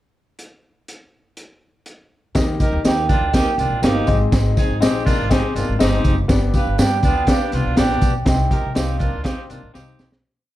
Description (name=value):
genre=uptempo 1960s-style soul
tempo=122 BPM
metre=4/4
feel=straight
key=Eb major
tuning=A4 = 440 Hz
part: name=crunchy breakbeat drum kit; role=drums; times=0.4-10.2 s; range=hi-hat, kick drum, snare drum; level=-19 LUFS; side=equal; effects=none
part: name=warm upright piano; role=accompaniment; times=2.3-10.1 s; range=G2 to F5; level=-25 LUFS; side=left 5 dB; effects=none
part: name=upright bass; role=bass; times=2.4-10.2 s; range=Gb1 to G2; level=-22 LUFS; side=equal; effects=none
part: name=tambourine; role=percussion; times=2.4-10.1 s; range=none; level=-36 LUFS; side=right 7 dB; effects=none
part: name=vibraphone with soft mallets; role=melody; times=2.6-10.0 s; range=Eb5 to G5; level=-25 LUFS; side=right 4 dB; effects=slapback echo
part: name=warm horn section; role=second line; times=2.6-10.1 s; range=Bb3 to B4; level=-26 LUFS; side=right 1 dB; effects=none
room=light reverb, studio ambience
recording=dark, warm production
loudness=-16 LUFS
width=side -14 dB against mid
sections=0.4-2.4 pickup bar; 2.4-10.2 verse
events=fade-out 8.3-10.2; drum fill 9.7-10.2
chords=0.4 N.C.; 2.4 Eb; 4.1 Ab; 6.3 G; 8.3 Cm